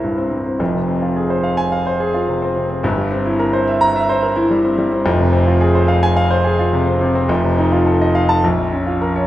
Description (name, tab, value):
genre	classical, virtuoso piano study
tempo	107 BPM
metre	4/4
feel	rubato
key	F minor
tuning	A4 = 443 Hz
part	warm concert grand piano	solo	0.0-9.3 s	F1 to Bb5	-14 LUFS	equal	none
room	wet recital hall reverb, RT60 1.3 s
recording	recorded in a church or concert hall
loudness	-14 LUFS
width	side -14 dB against mid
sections	0.0-9.3 A section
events	none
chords	0.0 C7; 0.6 Fm; 2.8 C7/G; 5.1 Fm; 7.3 F7; 8.4 Bbm